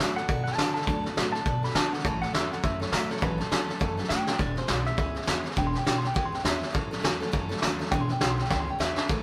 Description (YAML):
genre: rockabilly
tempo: 204 BPM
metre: 4/4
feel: swing 60% on 8ths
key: A major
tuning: A4 = 440 Hz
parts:
  - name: clean electric guitar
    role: melody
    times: 0.0-9.1 s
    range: A4 to C6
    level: -35 LUFS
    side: equal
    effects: none
  - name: picked steel-string acoustic guitar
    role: accompaniment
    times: 0.0-9.2 s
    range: A2 to A4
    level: -37 LUFS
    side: equal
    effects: none
  - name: upright bass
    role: bass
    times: 0.0-9.2 s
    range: E1 to D3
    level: -35 LUFS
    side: equal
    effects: none
  - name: vintage brush drum kit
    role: drums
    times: 0.0-9.2 s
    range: hi-hat, kick drum, snare drum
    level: -30 LUFS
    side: equal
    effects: none
room: moderate stone room reverb, RT60 1.1 s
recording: band playing live in one room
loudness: -27 LUFS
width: mono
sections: 0.0-9.1 A section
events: clean electric guitar solo 0.0-9.1; drum fill 4.1, 8.5-9.1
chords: 0.0 D6; 2.0 A6; 4.4 E6; 6.7 A6; 7.9 E6